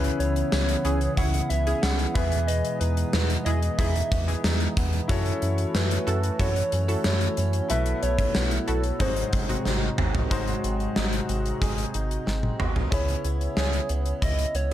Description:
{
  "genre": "1980s-style pop",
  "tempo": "92 BPM",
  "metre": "4/4",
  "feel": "straight",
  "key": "C# minor",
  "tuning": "A4 = 442 Hz",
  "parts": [
    { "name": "warm concert grand piano", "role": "accompaniment", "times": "0.0-14.7 s", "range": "G#2 to B5", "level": "-33 LUFS", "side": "left 4 dB", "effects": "none" },
    { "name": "chorused pulse-width pad", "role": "sustained chords", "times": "0.0-12.9 s", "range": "B2 to F#4", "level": "-34 LUFS", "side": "right 1 dB", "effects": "none" },
    { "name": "direct-recorded clean electric guitar", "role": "riff", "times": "0.0-14.7 s", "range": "F#3 to A4", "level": "-36 LUFS", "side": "right 4 dB", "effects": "lush chorus, tape echo" },
    { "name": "rubbery square bass", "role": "bass", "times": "0.0-14.7 s", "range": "G#1 to F#2", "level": "-26 LUFS", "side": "equal", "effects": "none" },
    { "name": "gated 80s drum kit", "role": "drums", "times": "0.0-14.7 s", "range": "hi-hat, kick drum, snare drum, tambourine, toms", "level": "-27 LUFS", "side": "equal", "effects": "none" },
    { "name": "soft struck synth lead", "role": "melody", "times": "0.2-14.7 s", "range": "B4 to F#5", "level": "-31 LUFS", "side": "right 1 dB", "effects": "chorus, tape echo" },
    { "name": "funky polysynth comp", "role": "stabs", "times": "0.8-10.0, 14.7 s", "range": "E3 to A4", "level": "-34 LUFS", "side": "equal", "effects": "chorus, tape echo" }
  ],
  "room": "light reverb, studio ambience",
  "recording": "dark, warm production",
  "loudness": "-22 LUFS",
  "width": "side -12 dB against mid",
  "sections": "0.0-10.3 A section; 10.3-12.9 B section; 12.9-14.7 C section",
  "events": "drum fill 9.7-10.3, 12.3-12.9",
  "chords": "0.0 C#m7; 2.2 Emaj7; 5.1 F#m7; 7.7 B7sus4; 9.0 G#7; 12.9 C#m7"
}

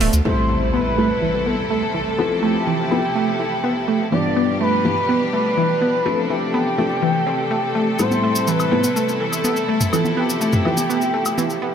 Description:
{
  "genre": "progressive house",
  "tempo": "124 BPM",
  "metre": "4/4",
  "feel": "straight",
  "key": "A minor",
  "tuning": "A4 = 440 Hz",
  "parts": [
    { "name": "bright symphonic string section", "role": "sustained chords", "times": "0.0-11.7 s", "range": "B2 to A4", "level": "-25 LUFS", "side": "left 1 dB", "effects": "none" },
    { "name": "analog pluck", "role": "arpeggios", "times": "0.0-11.7 s", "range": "E3 to C4", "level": "-22 LUFS", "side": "right 2 dB", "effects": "chorus, digital delay" },
    { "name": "gated 80s drum kit", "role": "drums", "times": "0.0-11.7 s", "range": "none", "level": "barely audible", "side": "none", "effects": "none" },
    { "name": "cabasa", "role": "percussion", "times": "0.1-0.2, 8.0-11.6 s", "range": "none", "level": "-28 LUFS", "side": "left 3 dB", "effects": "none" },
    { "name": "expressive portamento lead", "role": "melody", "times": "0.3-11.7 s", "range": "G4 to D5", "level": "-22 LUFS", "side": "equal", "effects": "wide subtle chorus, digital delay" },
    { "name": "felt-muted upright piano", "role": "stabs", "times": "0.3-10.7 s", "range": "G2 to A4", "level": "-25 LUFS", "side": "left 3 dB", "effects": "low-pass filter, digital delay" },
    { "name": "impact", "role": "sound effects", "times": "0.3-2.2 s", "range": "none", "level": "-26 LUFS", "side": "equal", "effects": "none" },
    { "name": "electronic woodblock, congas and toms", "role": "percussion", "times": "8.0-11.5 s", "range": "none", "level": "-23 LUFS", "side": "left 1 dB", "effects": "overdrive" }
  ],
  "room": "moderate huge ambient reverb, RT60 4.9 s",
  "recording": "none",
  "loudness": "-17 LUFS",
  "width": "side -8 dB against mid",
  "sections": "0.3-11.7 A section",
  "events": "impact 0.3-2.2; filter sweep on synth pluck 0.3-11.7",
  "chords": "0.3 Am7; 2.2 Fmaj7; 4.1 G7; 6.1 Dm7; 8.0 Am7; 9.9 Fmaj7"
}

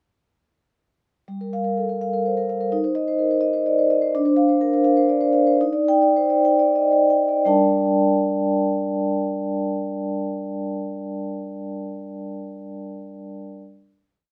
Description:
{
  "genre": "classical, contemporary piece for solo vibraphone",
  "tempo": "58-86 BPM (dotted quarters)",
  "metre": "6/8",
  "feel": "rubato",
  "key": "G minor",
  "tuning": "A4 = 440 Hz",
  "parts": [
    { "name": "vibraphone with soft mallets", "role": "solo", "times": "1.3-13.6 s", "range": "G3 to A5", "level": "-21 LUFS", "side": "equal", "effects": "none" }
  ],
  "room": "light reverb",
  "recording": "none",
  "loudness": "-21 LUFS",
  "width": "mono",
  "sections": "1.3-7.4 A section; 7.4-11.4 final chord",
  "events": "slowing down 3.4-7.4",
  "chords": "1.3 Gm9; 2.7 Eb5; 4.1 Dm7; 5.6 Ebmaj7; 7.4 Gmadd9"
}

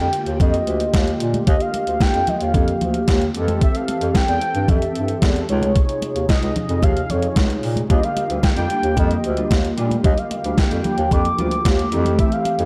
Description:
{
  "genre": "early-eighties boogie funk",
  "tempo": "112 BPM",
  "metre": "4/4",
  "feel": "straight",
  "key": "Eb major",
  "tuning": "A4 = 440 Hz",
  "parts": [
    { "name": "warm velvety synth lead", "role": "melody", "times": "0.0-12.7 s", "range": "Db5 to D6", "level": "-27 LUFS", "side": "equal", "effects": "chorus, delay" },
    { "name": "mellow synth brass", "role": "accompaniment", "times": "0.0-12.7 s", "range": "C3 to A4", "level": "-27 LUFS", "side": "equal", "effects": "chorus" },
    { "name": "mellow bass clarinet", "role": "bass", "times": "0.0-12.7 s", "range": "Db2 to Bb2", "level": "-24 LUFS", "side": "equal", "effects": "none" },
    { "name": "crisp 8-bit digital drum machine", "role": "drums", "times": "0.0-12.7 s", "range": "hi-hat, kick drum, snare drum", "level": "-21 LUFS", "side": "equal", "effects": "none" },
    { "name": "congas", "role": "percussion", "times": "0.4-12.6 s", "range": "none", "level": "-31 LUFS", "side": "equal", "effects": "none" },
    { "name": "mellow electric guitar", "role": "riff", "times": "7.9-12.7 s", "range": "G3 to G4", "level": "-31 LUFS", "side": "equal", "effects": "ensemble chorus" }
  ],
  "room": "moderate lush hall reverb, RT60 1.6 s",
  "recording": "dreamy mix soaked in reverb",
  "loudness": "-19 LUFS",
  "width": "mono",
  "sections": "0.0-12.7 A section",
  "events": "none",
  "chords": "0.0 Ebmaj9; 3.3 Fmaj9; 5.5 Dbmaj9; 7.9 Ebmaj9; 11.9 Fmaj9"
}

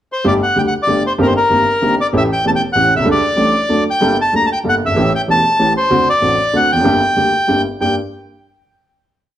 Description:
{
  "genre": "tango",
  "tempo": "190 BPM",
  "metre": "3/4",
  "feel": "rubato",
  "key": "G harmonic minor",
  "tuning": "A4 = 439 Hz",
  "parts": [
    { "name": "bandoneon", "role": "melody", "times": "0.1-8.0 s", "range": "Bb4 to Bb5", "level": "-14 LUFS", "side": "equal", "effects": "plate reverb" },
    { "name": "warm concert grand piano", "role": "accompaniment", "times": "0.2-7.9 s", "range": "E1 to A4", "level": "-16 LUFS", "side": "equal", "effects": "none" }
  ],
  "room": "moderate large studio reverb, RT60 0.9 s",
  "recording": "none",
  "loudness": "-12 LUFS",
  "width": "side -11 dB against mid",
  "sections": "0.0-0.2 pickup bar; 0.2-7.8 A section; 7.8-8.8 final chord",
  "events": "none",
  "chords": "0.2 Gsus2; 1.2 Cm7/G; 2.1 A7; 3.1 Dsus4; 3.7 D; 4.0 Gmadd9; 5.0 A7; 5.9 D7; 6.9 Gm"
}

